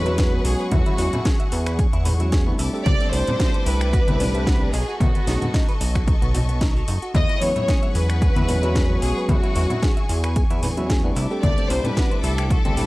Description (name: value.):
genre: nu-disco, nu disco.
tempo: 112 BPM.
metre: 4/4.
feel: swing 54% on 16ths.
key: E major.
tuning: A4 = 439 Hz.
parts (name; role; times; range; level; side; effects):
warm studio violin section; melody; 0.0-12.9 s; F#4 to D#5; -27 LUFS; left 1 dB; tape echo.
tine electric piano; accompaniment; 0.0-12.9 s; F#3 to A4; -27 LUFS; equal; sidechain pumping, tape echo.
clear symphonic string section; sustained chords; 0.0-12.9 s; G#4 to D6; -34 LUFS; left 3 dB; sidechain pumping.
chorused synth bass; bass; 0.0-12.9 s; F#1 to E2; -23 LUFS; equal; tube saturation, sidechain pumping.
direct-recorded clean electric guitar; riff; 0.1-12.8 s; F#3 to E5; -33 LUFS; right 3 dB; lush chorus.
house drum kit; drums; 0.1-12.9 s; finger snaps, hi-hat, snare drum; -30 LUFS; equal; overdrive.
tube shaker and congas; percussion; 0.1-12.9 s; none; -28 LUFS; left 1 dB; none.
electronic kick drum; drums; 0.2-12.6 s; none; -21 LUFS; equal; overdrive.
room: little or no reverb.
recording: dry, gritty hardware recording, cassette tape.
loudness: -18 LUFS.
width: side -20 dB against mid.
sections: 0.0-12.9 A section.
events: none.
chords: 0.0 E69; 2.6 C69; 4.7 B9; 7.1 E69; 11.2 C69.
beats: 0.18 | 0.72 1.25 1.79 2.33 | 2.86 3.40 3.93 4.47 | 5.00 5.54 6.08 6.61 | 7.15 7.68 8.22 8.76 | 9.29 9.83 10.36 10.90 | 11.43 11.97 12.51.